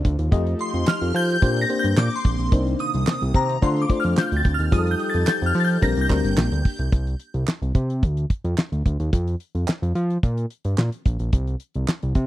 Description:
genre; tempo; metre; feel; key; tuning
early-eighties boogie funk; 109 BPM; 4/4; straight; unclear; A4 = 440 Hz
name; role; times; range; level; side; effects
chorused pulse-width pad; sustained chords; 0.0-6.9 s; C3 to A4; -31 LUFS; equal; none
fat analog bass; bass; 0.0-12.3 s; G1 to F3; -22 LUFS; equal; none
damped 70s drum kit; drums; 0.0-12.3 s; hi-hat, kick drum, snare drum; -19 LUFS; equal; none
FM electric piano with auto-pan; accompaniment; 0.3-6.6 s; G3 to Eb5; -26 LUFS; left 3 dB; none
shimmering bell with halo; melody; 0.6-6.8 s; Bb5 to Bb6; -26 LUFS; left 2 dB; ensemble chorus, phaser, slapback echo
group handclap; percussion; 0.9-12.0 s; none; -32 LUFS; right 8 dB; none
room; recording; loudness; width
small room ambience; dry, close 1970s-style studio recording; -19 LUFS; side -14 dB against mid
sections
0.0-6.9 A section; 6.9-12.3 B section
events
synth bell solo 0.0-6.9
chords
0.3 F9; 1.4 Bb69; 2.5 Cm9; 3.6 Dm7; 4.7 F9; 5.8 Bb69; 6.9 N.C.; 8.0 Dm; 9.1 N.C.; 10.2 Gm/Bb; 11.3 N.C.

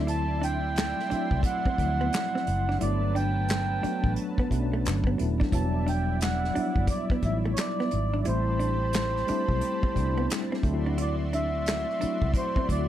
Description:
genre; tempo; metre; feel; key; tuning
R&B, neo-soul; 88 BPM; 4/4; swing 64% on 16ths; unclear; A4 = 440 Hz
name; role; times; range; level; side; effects
vintage hollow-body jazz guitar; second line; 0.0-12.7 s; A3 to E4; -34 LUFS; right 3 dB; none
mellow tine electric piano; accompaniment; 0.0-12.9 s; F3 to F#4; -31 LUFS; left 2 dB; medium stereo tremolo
lush unison pad; sustained chords; 0.0-12.9 s; F#3 to C6; -39 LUFS; left 1 dB; chorus
vintage muted fingered electric bass; bass; 0.0-12.9 s; D#1 to D2; -28 LUFS; equal; none
mellow accordion; melody; 0.1-12.9 s; C5 to A5; -31 LUFS; right 3 dB; slapback echo
unplugged drum kit; drums; 0.1-12.9 s; handclaps, hi-hat, kick drum, snare drum; -30 LUFS; equal; none
room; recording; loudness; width
light reverb; dark, warm production; -24 LUFS; side -11 dB against mid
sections
0.0-12.9 A section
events
none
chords
0.0 D9; 2.8 Gmaj9; 5.5 Em9; 8.2 Am9; 10.6 D9

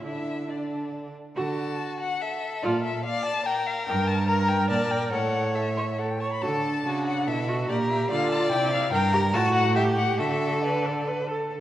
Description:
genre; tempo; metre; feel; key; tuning
quick classical-period movement for string quartet; 133-148 BPM; 3/4; rubato; D major; A4 = 440 Hz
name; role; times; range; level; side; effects
rich violin; melody; 0.0-11.3 s; D5 to B5; -29 LUFS; left 5 dB; none
clear violin; second line; 0.0-11.6 s; D4 to D5; -30 LUFS; left 1 dB; none
clear viola; accompaniment; 0.0-11.5 s; D4 to C#5; -29 LUFS; right 2 dB; none
rich cello; bass; 0.0-11.6 s; G2 to D3; -28 LUFS; right 2 dB; none
room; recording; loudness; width
wet concert hall reverb, RT60 2.2 s; worn, warbling old tape, cassette tape, warbly pitch drift; -23 LUFS; side -12 dB against mid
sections
0.0-1.4 A section; 1.4-11.5 A section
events
none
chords
0.0 Dsus2; 1.4 D; 2.6 Bb; 3.9 Gm; 5.1 A; 6.4 D; 7.7 Bb; 8.9 Gm; 9.3 F#m/A; 9.8 A5; 10.2 D

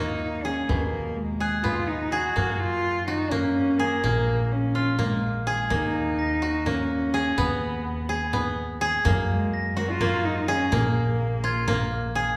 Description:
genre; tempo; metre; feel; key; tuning
contemporary instrumental, chamber music in an uneven meter; 251 BPM (eighths); 7/8; straight; Bb phrygian; A4 = 440 Hz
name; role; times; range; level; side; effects
dark cello; melody; 0.0-11.9 s; Ab3 to F#4; -30 LUFS; equal; none
koto; arpeggios; 0.0-12.4 s; B2 to Ab4; -30 LUFS; equal; none
upright bass; bass; 0.0-12.4 s; Bb1 to Gb2; -31 LUFS; equal; none
glockenspiel with hard plastic mallets; texture; 0.0-2.2, 4.8-6.9, 9.5-12.2 s; F6 to Bb6; -39 LUFS; equal; none
frame drum; percussion; 0.2-12.3 s; none; -35 LUFS; equal; none
room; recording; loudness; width
wet recital hall reverb, RT60 1.5 s; recorded in a church or concert hall; -25 LUFS; mono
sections
0.0-12.4 A section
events
none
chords
0.0 Ebm; 0.7 B6/D#; 2.4 Gb; 4.0 Bbm; 5.7 Ebm7; 7.4 B6/D#; 9.1 Gb; 10.7 Bb5

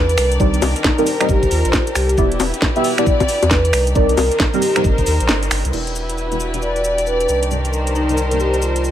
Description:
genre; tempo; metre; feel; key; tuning
UK garage, two-step garage; 135 BPM; 4/4; swing 63% on 16ths; unclear; A4 = 436 Hz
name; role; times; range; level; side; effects
vibraphone with soft mallets; melody; 0.0-8.8 s; Eb4 to D5; -20 LUFS; equal; ping-pong delay
dark studio violin section; sustained chords; 0.0-8.9 s; D4 to B4; -27 LUFS; left 1 dB; sidechain pumping, low-pass filter
saturated sub bass; bass; 0.0-8.9 s; E1 to E2; -20 LUFS; equal; none
rich studio string section; texture; 0.0-8.9 s; Eb3 to D5; -25 LUFS; left 1 dB; sidechain pumping
garage drum kit; drums; 0.1-8.9 s; bongos, cabasa, crash cymbal, finger snaps, hi-hat, snare drum; -20 LUFS; left 1 dB; small room ambience
deep mellow chord stab; stabs; 0.4-8.5 s; G3 to E5; -21 LUFS; right 1 dB; chorus, phaser
electronic kick drum; drums; 0.4-5.0 s; none; -19 LUFS; equal; small room ambience
room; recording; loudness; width
light reverb; none; -14 LUFS; side -11 dB against mid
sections
0.0-5.7 A section; 5.7-8.9 B section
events
kick drops out 5.3-5.7; band accent 5.3; filter sweep on synth stab 5.7-8.9; filter sweep on violin section 5.7-8.9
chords
0.2 Cm7; 2.2 Em7; 3.7 Cm7; 5.7 Em7; 7.3 Cm7

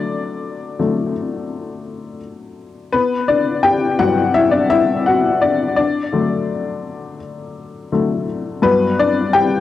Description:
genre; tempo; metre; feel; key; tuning
pop; 84 BPM; 4/4; straight; G major; A4 = 441 Hz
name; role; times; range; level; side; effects
dark upright piano; solo; 0.0-9.6 s; G2 to G5; -16 LUFS; left 3 dB; cassette tape, analog delay
room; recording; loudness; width
light reverb; home recording on cassette; -15 LUFS; side -12 dB against mid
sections
0.0-2.9 A section; 2.9-9.6 B section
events
upright piano solo 0.0-2.9, 2.9-9.6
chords
0.0 D; 2.9 Gmaj7; 5.8 D; 8.6 Gmaj7

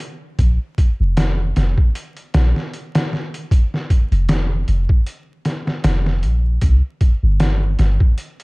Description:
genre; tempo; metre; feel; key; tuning
trip hop; 77 BPM; 4/4; swing 55% on 16ths; unclear; A4 = 440 Hz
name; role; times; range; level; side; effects
trip hop sampler-style drum kit; drums; 0.0-8.4 s; hi-hat, kick drum, snare drum; -17 LUFS; equal; none
soft 808-style bass; bass; 0.4-8.0 s; F1 to C2; -16 LUFS; equal; none
room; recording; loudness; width
little or no reverb; dark, warm production, vinyl crackle; -16 LUFS; side -27 dB against mid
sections
0.0-8.4 A section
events
none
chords
none

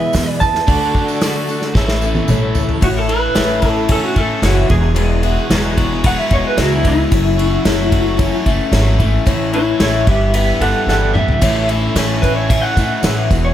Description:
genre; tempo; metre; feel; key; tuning
folk rock and heartland rock; 112 BPM; 4/4; straight; A major; A4 = 439 Hz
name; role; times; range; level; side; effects
electric guitar through a small old amp; melody; 0.0-13.5 s; E4 to A5; -18 LUFS; equal; tremolo
picked twelve-string acoustic guitar; accompaniment; 0.0-13.5 s; E2 to B4; -21 LUFS; left 5 dB; none
tonewheel organ; sustained chords; 0.0-2.8, 11.4-13.5 s; A3 to B4; -28 LUFS; equal; none
crunchy overdriven guitar; riff; 0.0-13.5 s; E2 to G#4; -21 LUFS; right 1 dB; none
upright bass; bass; 0.0-13.5 s; E1 to E2; -18 LUFS; equal; none
unplugged drum kit; drums; 0.1-13.4 s; crash cymbal, hi-hat, kick drum, ride cymbal, snare drum, toms; -18 LUFS; equal; none
tambourine; percussion; 0.1-2.8, 11.4-13.4 s; none; -35 LUFS; right 9 dB; none
room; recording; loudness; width
light reverb; none; -12 LUFS; side -11 dB against mid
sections
0.0-2.8 A section; 2.8-13.5 B section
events
drum fill 1.8-2.8, 10.9-11.4; clean electric guitar solo 2.8-13.5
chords
0.0 E; 0.7 D; 1.8 A; 4.7 Eadd9; 7.1 F#m7; 9.3 A; 10.1 G6; 11.4 A

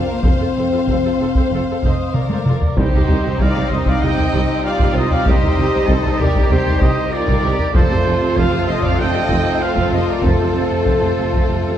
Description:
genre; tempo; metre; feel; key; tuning
cinematic, epic orchestral film score; 96 BPM; 4/4; straight; C dorian; A4 = 440 Hz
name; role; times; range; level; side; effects
warm symphonic violin section; melody; 0.0-11.8 s; G4 to Eb5; -26 LUFS; left 4 dB; none
warm symphonic violin section; second line; 0.0-11.8 s; Eb4 to F5; -26 LUFS; left 4 dB; none
dark French horn section; sustained chords; 0.0-11.8 s; G3 to F4; -24 LUFS; left 3 dB; none
rich symphonic viola section; accompaniment; 0.2-11.8 s; C3 to C5; -26 LUFS; right 3 dB; none
clear symphonic cello section; bass; 0.2-11.8 s; F2 to A4; -25 LUFS; right 3 dB; none
mellow tuba; bass; 0.2-11.5 s; F1 to C2; -25 LUFS; right 3 dB; none
rich symphonic double bass section; bass; 0.2-11.7 s; F1 to F2; -23 LUFS; right 3 dB; none
taiko ensemble; drums; 0.2-11.8 s; none; -19 LUFS; equal; none
warm trumpet section; stabs; 1.8-11.8 s; C5 to G5; -23 LUFS; right 2 dB; none
timpani; percussion; 2.8-3.7 s; C3; -27 LUFS; equal; none
room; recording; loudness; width
moderate concert hall reverb, RT60 2.2 s; dark, warm production; -14 LUFS; side -10 dB against mid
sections
0.0-2.8 A section; 2.8-11.8 A section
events
drum fill 2.1-2.8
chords
0.0 F; 2.8 Cm; 7.7 F

